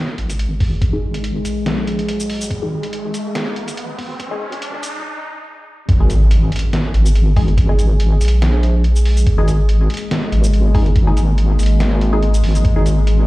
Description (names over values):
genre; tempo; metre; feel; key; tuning
deep dubstep; 142 BPM; 4/4; swing 54% on 16ths, half-time; unclear; A4 = 442 Hz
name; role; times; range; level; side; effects
deep dark ambient pad; sustained chords; 0.2-13.3 s; G#3 to G#4; -25 LUFS; left 1 dB; chorus, built-in reverb
riser and impact; sound effects; 2.0-7.6 s; none; -24 LUFS; equal; none
deep soft wobble bass; bass; 0.2-13.3 s; D#1 to A#1; -15 LUFS; equal; chorus
trip hop sampler-style drum kit; drums; 0.2-13.2 s; hi-hat, shaker, snare drum; -25 LUFS; equal; overdrive, small room reverb
electronic kick drum; drums; 0.6-12.7 s; none; -16 LUFS; equal; overdrive, small room reverb
filtered dub chord stab; stabs; 0.9-12.9 s; G#3 to G#4; -27 LUFS; left 2 dB; phaser, lush chorus, dub echo
room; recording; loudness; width
light reverb; played on a big sound system in a bare room, stone room reverb, high-pass filter; -14 LUFS; side -19 dB against mid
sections
0.0-5.9 A section; 5.9-13.3 B section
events
build-up 0.0-5.9; filter sweep on synth stab 0.0-5.9; filter sweep 0.0-5.9; riser 2.0-5.0; break 5.0-5.9; drop 5.9-13.3; impact 5.9-7.6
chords
0.0 G#5